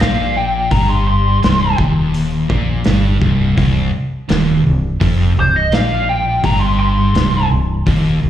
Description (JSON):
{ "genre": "blues rock power trio and southern rock", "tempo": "84 BPM", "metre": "4/4", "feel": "straight", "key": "C minor", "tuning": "A4 = 440 Hz", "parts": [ { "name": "biting lead guitar", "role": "melody", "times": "0.0-7.5 s", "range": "C5 to C6", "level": "-18 LUFS", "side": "left 1 dB", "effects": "wah, overdrive, slapback echo, analog delay" }, { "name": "sludgy distorted guitar", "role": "riff", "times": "0.0-8.3 s", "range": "C2 to Bb2", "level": "-16 LUFS", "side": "equal", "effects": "overdrive, slapback echo" }, { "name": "woody fretless electric bass", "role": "bass", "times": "0.0-8.3 s", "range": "C1 to Bb1", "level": "-18 LUFS", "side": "equal", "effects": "none" }, { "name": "vintage drum kit", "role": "drums", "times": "0.0-8.0 s", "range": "hi-hat, kick drum, snare drum", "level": "-19 LUFS", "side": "equal", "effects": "none" } ], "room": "small room ambience", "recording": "live gig heard through the venue's PA, club reverb", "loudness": "-12 LUFS", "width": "side -11 dB against mid", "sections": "0.0-8.3 A section", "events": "none", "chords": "0.0 Cm", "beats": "0.00 | 0.71 1.43 2.15 2.86 | 3.58 4.29 5.01 5.72 | 6.44 7.16 7.87" }